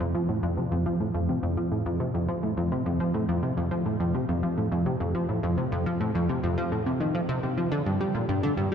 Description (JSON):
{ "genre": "ambient", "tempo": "105 BPM", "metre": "4/4", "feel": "straight", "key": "unclear", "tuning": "A4 = 438 Hz", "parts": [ { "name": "plucky analog bass", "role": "solo", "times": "0.0-8.7 s", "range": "F2 to G3", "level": "-25 LUFS", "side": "equal", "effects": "analog chorus, ping-pong delay" } ], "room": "wet cathedral reverb, RT60 4.8 s", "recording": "in a vast, echoing space", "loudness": "-25 LUFS", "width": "side -8 dB against mid", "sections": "0.0-8.7 A section", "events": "none", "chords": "none" }